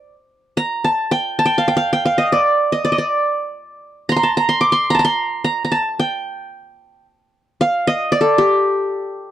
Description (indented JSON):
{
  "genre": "turkish",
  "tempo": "222 BPM (eighths)",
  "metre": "9/8",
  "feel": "straight",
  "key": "G makam nihavent",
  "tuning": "A4 = 440 Hz",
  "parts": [
    { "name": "qanun", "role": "solo", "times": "0.0-9.3 s", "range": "G4 to D6", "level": "-15 LUFS", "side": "equal", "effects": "none" }
  ],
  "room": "light reverb",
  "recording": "dry, close 1970s-style studio recording",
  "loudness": "-15 LUFS",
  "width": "side -12 dB against mid",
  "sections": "0.0-9.3 A section",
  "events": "none",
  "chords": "none",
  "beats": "0.15 0.42 0.69 0.96 1.24 1.51 1.78 2.05 | 2.32 2.59 2.86 3.13 3.40 3.67 3.94 4.21 4.48 | 4.75 5.02 5.29 5.56 5.83 6.11 6.38 6.65 6.92 | 7.19 7.46 7.73 8.00 8.27 8.54 8.81 9.08"
}